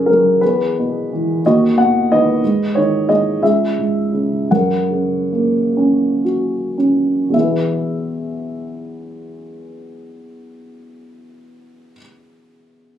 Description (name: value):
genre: classical, lyrical solo piano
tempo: 34-61 BPM (dotted quarters)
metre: 6/8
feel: rubato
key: E lydian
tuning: A4 = 440 Hz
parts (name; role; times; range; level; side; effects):
- dark baby grand piano; solo; 0.0-13.0 s; C#2 to F#5; -15 LUFS; equal; none
room: light reverb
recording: recorded on a phone in the room, club reverb, compression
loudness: -14 LUFS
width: side -10 dB against mid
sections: 0.0-7.3 A section; 7.3-13.0 B section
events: slowing down 2.4-7.3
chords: 0.4 E; 1.4 B/D#; 2.4 G#m; 3.4 C#m; 4.5 F#; 7.3 E